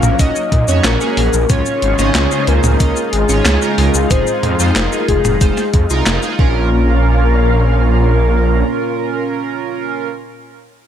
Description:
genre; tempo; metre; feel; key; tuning
synthwave; 92 BPM; 4/4; straight; Bb minor; A4 = 440 Hz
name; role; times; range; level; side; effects
soft octave-layered synth lead; melody; 0.0-10.1 s; Ab4 to F5; -19 LUFS; left 2 dB; chorus, phaser, digital delay
analog string pad; sustained chords; 0.0-10.1 s; Bb2 to F5; -21 LUFS; left 1 dB; ensemble chorus, sidechain pumping
chorused polysynth; stabs; 0.0-10.1 s; Db4 to Eb5; -21 LUFS; right 5 dB; none
wide detuned saw bass; bass; 0.0-8.6 s; F1 to Bb2; -15 LUFS; equal; chorus
clean 12-bit digital drum machine; drums; 0.0-6.4 s; cabasa, handclaps, hi-hat, snare drum, toms; -19 LUFS; equal; gated reverb
electronic kick drum; drums; 0.2-6.5 s; none; -14 LUFS; equal; none
room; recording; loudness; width
little or no reverb; none; -12 LUFS; side -9 dB against mid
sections
0.0-6.7 A section; 6.7-9.3 B section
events
none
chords
0.0 Gb/Bb; 1.5 Dbmaj7; 4.1 Fm7; 6.4 Bbm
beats
0.20 0.85 | 1.50 2.15 2.80 3.46 | 4.11 4.76 5.41 6.06 | 6.72 7.37 8.02 8.67

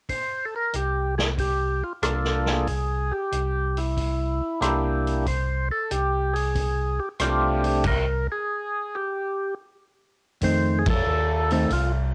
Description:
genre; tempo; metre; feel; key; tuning
soul jazz organ trio; 93 BPM; 4/4; swing 69% on 8ths; unclear; A4 = 440 Hz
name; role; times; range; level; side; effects
percussive tonewheel organ; melody; 0.1-11.9 s; A3 to C5; -28 LUFS; equal; slow rotary speaker, plate reverb
vintage drum kit; drums; 0.1-11.9 s; crash cymbal, hi-hat, kick drum, ride cymbal, rim click, snare drum; -31 LUFS; equal; cassette tape
mellow tonewheel organ; bass; 0.7-12.1 s; C2 to F2; -28 LUFS; equal; slow rotary speaker
hollow-body jazz guitar; accompaniment; 10.4-11.7 s; Eb3 to C4; -26 LUFS; equal; cassette tape, plate reverb
room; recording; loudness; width
light reverb; home recording on cassette; -25 LUFS; mono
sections
0.1-10.4 A section; 10.4-12.1 B section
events
stop 7.8-10.4; band accent 10.7-11.1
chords
0.1 C13sus4; 10.4 F7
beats
| 0.09 0.74 1.39 2.03 | 2.68 3.33 3.97 4.62 | 5.26 5.91 6.55 7.20 | 7.84 8.49 9.13 9.78 | 10.42 11.06 11.71

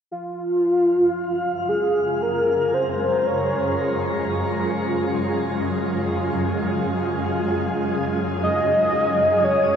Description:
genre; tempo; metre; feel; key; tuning
ambient; free time; none; none; unclear; A4 = 440 Hz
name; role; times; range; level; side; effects
warm velvety synth lead; melody; 0.1-9.8 s; F4 to Eb5; -21 LUFS; equal; chorus, tape echo
shimmering ambient pad; sustained chords; 1.6-9.8 s; Gb2 to Ab4; -23 LUFS; equal; chorus, built-in reverb
room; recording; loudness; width
wet shimmer reverb, RT60 7.8 s; cassette tape; -19 LUFS; side -8 dB against mid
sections
0.1-9.8 A section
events
filter sweep on ambient pad 0.1-9.8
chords
0.1 Db/Gb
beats
free time

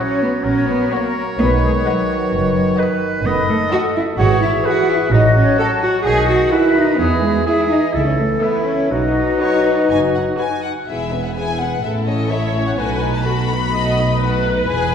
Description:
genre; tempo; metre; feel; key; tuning
quick classical-period movement for symphony orchestra; 127 BPM; 4/4; rubato; B major; A4 = 442 Hz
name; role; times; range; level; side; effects
warm chamber violin section; melody; 0.0-14.9 s; B4 to B5; -26 LUFS; left 6 dB; none
clear oboe; second line; 0.0-10.6 s; D#4 to D#5; -24 LUFS; equal; none
large flute ensemble; second line; 0.0-10.6 s; F#4 to A5; -23 LUFS; left 2 dB; none
mellow clarinet; second line; 0.0-10.6 s; F#4 to C#5; -26 LUFS; left 2 dB; none
rich chamber violin section; second line; 0.0-14.9 s; B3 to E5; -29 LUFS; left 4 dB; none
mellow bassoon; accompaniment; 0.0-10.6 s; D#3 to F#3; -25 LUFS; right 3 dB; none
rich symphonic viola section; accompaniment; 0.0-14.9 s; F#4 to D#5; -25 LUFS; equal; none
dark French horn section; sustained chords; 0.0-14.9 s; A3 to E5; -24 LUFS; left 3 dB; none
dark chamber cello section; bass; 0.0-14.9 s; E2 to A4; -20 LUFS; right 1 dB; none
rich chamber double bass section; bass; 0.4-14.9 s; E1 to E2; -21 LUFS; right 2 dB; none
room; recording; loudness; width
wet scoring stage reverb, RT60 1.8 s; heard from further back in the room; -14 LUFS; side -8 dB against mid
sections
0.0-10.9 A section; 10.9-14.9 B section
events
none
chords
0.0 F#; 1.4 B; 3.3 B7/F#; 4.2 E/G#; 5.1 F#m/A; 6.1 B; 7.0 E; 7.9 A/C#; 8.9 B; 10.9 E; 11.8 A; 12.8 B7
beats
0.45 0.92 | 1.39 1.86 2.33 2.80 | 3.26 3.73 4.19 4.66 | 5.13 5.60 6.07 6.53 | 7.00 7.48 7.95 8.42 | 8.91 9.41 9.90 10.39 | 10.88 11.36 11.83 12.31 | 12.78 13.26 13.74 14.22 | 14.70

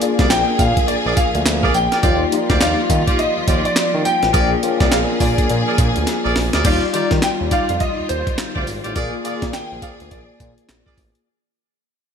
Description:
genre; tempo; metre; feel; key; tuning
R&B, new jack swing; 104 BPM; 4/4; swing 61% on 16ths; Eb major; A4 = 440 Hz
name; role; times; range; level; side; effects
mellow tine electric piano; accompaniment; 0.0-11.3 s; G3 to D5; -22 LUFS; left 6 dB; overdrive, ensemble chorus
warm studio string section; sustained chords; 0.0-11.2 s; Eb3 to Ab4; -26 LUFS; right 1 dB; none
breakbeat sampler-style drum kit; drums; 0.0-11.3 s; crash cymbal, handclaps, hi-hat, kick drum, snare drum, tambourine; -19 LUFS; right 1 dB; gated reverb
warm horn section; stabs; 0.2-11.0 s; F4 to D5; -24 LUFS; right 2 dB; none
smooth synth bass; bass; 0.2-11.1 s; Ab1 to Eb3; -22 LUFS; right 1 dB; none
warm grand piano; melody; 0.3-10.9 s; C5 to G5; -22 LUFS; equal; ensemble chorus
room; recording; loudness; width
light reverb, digital ambience; bright 1980s-style digital production; -15 LUFS; side -7 dB against mid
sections
0.0-6.6 A section; 6.6-11.3 B section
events
drum fill 6.1-6.6; fade-out 6.6-11.3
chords
0.0 Bb7; 2.0 Ebmaj9; 4.3 Bb7; 6.6 Ebmaj9; 9.0 Bb7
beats
0.30 0.88 1.46 | 2.03 2.61 3.19 3.76 | 4.34 4.92 5.50 6.07 | 6.65 7.23 7.80 8.38 | 8.96 9.53 10.11 10.69

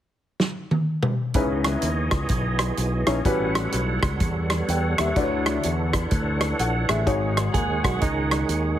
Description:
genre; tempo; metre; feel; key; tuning
uptempo gospel; 126 BPM; 4/4; swing 62% on 8ths; C# minor; A4 = 439 Hz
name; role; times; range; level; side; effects
natural country drum kit; drums; 0.4-8.6 s; hi-hat, kick drum, rim click, snare drum, toms; -25 LUFS; equal; none
modern bright fingered electric bass; bass; 1.3-8.7 s; A1 to E2; -26 LUFS; equal; none
warm upright piano; accompaniment; 1.4-7.8 s; G#2 to G5; -26 LUFS; left 3 dB; none
bright tonewheel organ; sustained chords; 1.4-8.8 s; D#3 to F#5; -28 LUFS; right 2 dB; slow rotary speaker, chorus vibrato
clean electric guitar; second line; 7.5-8.8 s; D#4 to G#4; -27 LUFS; right 6 dB; none
room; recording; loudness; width
light reverb; heavily compressed radio sound; -21 LUFS; side -11 dB against mid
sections
0.0-1.3 A section; 1.3-8.8 B section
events
drum fill 0.4-1.3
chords
0.0 N.C.; 1.3 C#m9; 3.3 A13; 5.2 Dmaj9; 7.1 G#7sus4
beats
0.40 0.87 | 1.35 1.82 2.30 2.78 | 3.25 3.73 4.21 4.68 | 5.16 5.64 6.11 6.59 | 7.07 7.55 8.03 8.50

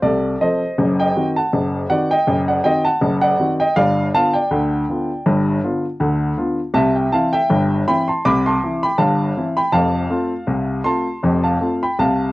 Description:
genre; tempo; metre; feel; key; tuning
ragtime piano; 80 BPM; 2/4; swing 55% on 16ths; C major; A4 = 444 Hz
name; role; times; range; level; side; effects
warm baby grand piano; solo; 0.0-12.3 s; F1 to D6; -16 LUFS; equal; cassette tape
room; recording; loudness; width
light reverb; home recording on cassette; -16 LUFS; side -19 dB against mid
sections
0.0-12.3 A section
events
none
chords
0.0 F; 0.8 F#dim7; 3.8 G7; 6.8 C; 9.7 F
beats
0.03 | 0.77 1.52 | 2.27 3.01 | 3.76 4.51 | 5.25 6.00 | 6.75 7.50 | 8.25 8.99 | 9.74 10.49 | 11.24 11.99

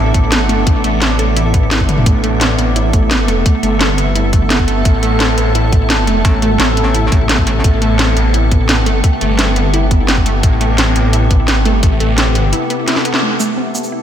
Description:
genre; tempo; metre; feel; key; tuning
dark technical drum and bass; 172 BPM; 4/4; straight; A minor; A4 = 438 Hz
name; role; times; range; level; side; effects
metallic inharmonic drone; sustained chords; 0.0-14.0 s; C3 to A4; -20 LUFS; equal; chorus, built-in reverb, sidechain pumping
wide unison pluck; arpeggios; 0.0-14.0 s; A3 to A4; -20 LUFS; right 2 dB; cassette tape, sidechain pumping, ping-pong delay
phased detuned saw bass; bass; 0.0-12.5 s; G1 to A1; -15 LUFS; equal; phaser, overdrive
granular cloud pad; texture; 0.0-14.0 s; A4 to D6; -22 LUFS; equal; built-in reverb, sidechain pumping
drum and bass drum kit; drums; 0.1-13.9 s; hi-hat, shaker, snare drum, toms; -18 LUFS; equal; none
electronic kick drum; drums; 0.1-11.9 s; none; -12 LUFS; equal; none
metallic wobble bass; bass; 6.2-7.6 s; A1; -15 LUFS; equal; chorus
room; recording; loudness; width
moderate lush hall reverb, RT60 1.8 s; dreamy mix soaked in reverb; -10 LUFS; side -10 dB against mid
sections
0.0-13.2 A section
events
drum fill 1.9, 12.9-13.2; break 12.5-13.2; band accent 13.1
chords
0.0 Amadd9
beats
0.32 | 0.67 1.02 1.36 1.71 | 2.06 2.41 2.76 3.11 | 3.46 3.81 4.16 4.50 | 4.85 5.20 5.55 5.90 | 6.25 6.60 6.95 7.29 | 7.64 7.99 8.34 8.69 | 9.04 9.39 9.74 10.09 | 10.43 10.78 11.13 11.48 | 11.83 12.18 12.53 12.88 | 13.22 13.57 13.92

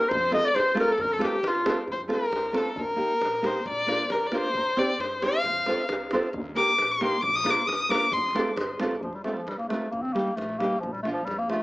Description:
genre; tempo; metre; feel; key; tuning
balkan folk, Balkan wedding band; 134 BPM; 2/4; straight; F mixolydian; A4 = 437 Hz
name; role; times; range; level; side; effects
warm clarinet; melody; 0.0-1.8, 9.0-11.6 s; F3 to Eb5; -26 LUFS; left 1 dB; none
warm violin; second line; 0.0-8.3 s; F4 to Eb6; -26 LUFS; left 1 dB; analog delay
nylon-string guitar; accompaniment; 0.0-11.6 s; F3 to C5; -28 LUFS; right 1 dB; none
upright bass; bass; 0.1-11.5 s; F1 to G2; -44 LUFS; equal; none
davul; percussion; 0.1-11.6 s; none; -33 LUFS; right 1 dB; none
room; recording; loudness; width
moderate studio ambience, RT60 0.5 s; small speaker sound; -23 LUFS; side -20 dB against mid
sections
0.0-1.9 A section; 1.9-9.0 B section; 9.0-11.6 C section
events
violin solo 1.9-9.0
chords
0.1 F; 2.8 Eb; 3.7 Bb; 4.6 Cm; 5.4 F; 6.3 Eb; 7.2 Bb; 8.1 F; 9.9 Eb; 10.8 Bb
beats
| 0.11 0.55 | 0.99 1.44 | 1.88 2.32 | 2.77 3.21 | 3.66 4.11 | 4.55 5.00 | 5.45 5.89 | 6.34 6.78 | 7.23 7.68 | 8.12 8.57 | 9.02 9.47 | 9.92 10.37 | 10.82 11.27

